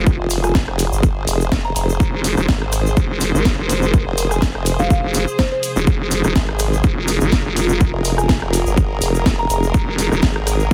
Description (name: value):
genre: bass house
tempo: 124 BPM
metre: 4/4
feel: swing 54% on 16ths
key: F minor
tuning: A4 = 441 Hz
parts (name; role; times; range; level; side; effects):
- sweeping resonant pad; sustained chords; 0.0-10.7 s; C3 to Bb4; -31 LUFS; equal; none
- vowel-sweep wobble bass; bass; 0.0-10.7 s; Eb1 to G1; -21 LUFS; equal; chorus, tube saturation, sidechain pumping
- rich chamber string section; texture; 0.0-10.7 s; Ab4 to C5; -29 LUFS; equal; sidechain pumping
- electronic kick drum; drums; 0.1-10.7 s; none; -18 LUFS; equal; small room ambience
- cabasa; percussion; 0.1-10.7 s; none; -32 LUFS; equal; none
- formant-sweep wobble bass; bass; 0.2-10.7 s; F1 to Ab1; -22 LUFS; equal; chorus, tube saturation, sidechain pumping
- garage drum kit; drums; 0.3-10.6 s; hi-hat, rim click, snare drum; -26 LUFS; equal; small room ambience
- soft synth bell; melody; 0.4-9.6 s; C5 to Bb5; -28 LUFS; equal; chorus, phaser, delay
room: little or no reverb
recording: heavily compressed radio sound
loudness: -17 LUFS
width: mono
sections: 0.0-10.7 A section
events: none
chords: 0.0 Fm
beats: | 0.07 0.55 1.03 1.52 | 2.00 2.48 2.97 3.45 | 3.94 4.42 4.90 5.39 | 5.87 6.36 6.84 7.32 | 7.81 8.29 8.78 9.26 | 9.74 10.23 10.71